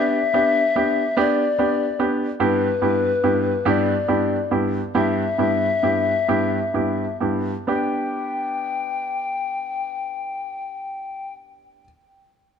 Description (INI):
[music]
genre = six-eight pop ballad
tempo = 41-48 BPM (dotted quarters)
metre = 6/8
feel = straight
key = G major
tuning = A4 = 440 Hz
[part]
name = mellow hollow polished pan flute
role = melody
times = 0.0-11.3 s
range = B4 to G5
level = -23 LUFS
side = left 5 dB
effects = none
[part]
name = clear baby grand piano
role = accompaniment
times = 0.0-11.8 s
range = G2 to G4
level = -21 LUFS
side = right 2 dB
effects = none
[sound]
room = moderate echo chamber reverb, RT60 2.6 s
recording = dark, warm production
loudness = -19 LUFS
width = side -7 dB against mid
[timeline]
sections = 0.0-7.7 A section; 7.7-10.6 B section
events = slowing down 2.4-7.7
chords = 0.0 G; 2.4 Em/G; 7.7 G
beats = 1.16 | 2.41 3.66 | 4.95 6.28 | 7.69 9.13